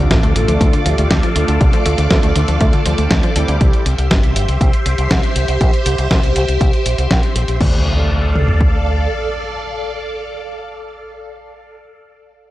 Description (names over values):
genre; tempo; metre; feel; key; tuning
italo disco; 120 BPM; 4/4; straight; D minor; A4 = 440 Hz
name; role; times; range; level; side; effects
phased string machine; sustained chords; 0.0-11.7 s; G4 to D6; -22 LUFS; equal; ensemble chorus, phaser
wide unison pluck; arpeggios; 0.0-3.6 s; D3 to A3; -23 LUFS; equal; tape echo
mellow synth brass; stabs; 0.0-3.8 s; G3 to A4; -23 LUFS; right 2 dB; chorus, tape echo
fingered electric bass with an envelope filter; bass; 0.0-9.1 s; G1 to D2; -17 LUFS; equal; none
impact; sound effects; 0.0-1.6, 7.6-11.7 s; none; -24 LUFS; equal; none
dusty soul sampler-style drum kit; drums; 0.1-7.7 s; crash cymbal, hi-hat, snare drum; -20 LUFS; equal; none
punchy analog drum machine; drums; 0.1-8.7 s; kick drum, toms; -15 LUFS; equal; none
room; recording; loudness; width
light reverb, digital ambience; dry, gritty hardware recording, cassette tape; -13 LUFS; side -15 dB against mid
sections
0.0-7.6 A section; 7.6-11.6 B section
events
impact 0.0-1.6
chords
0.0 Dm; 3.6 C; 7.6 Dm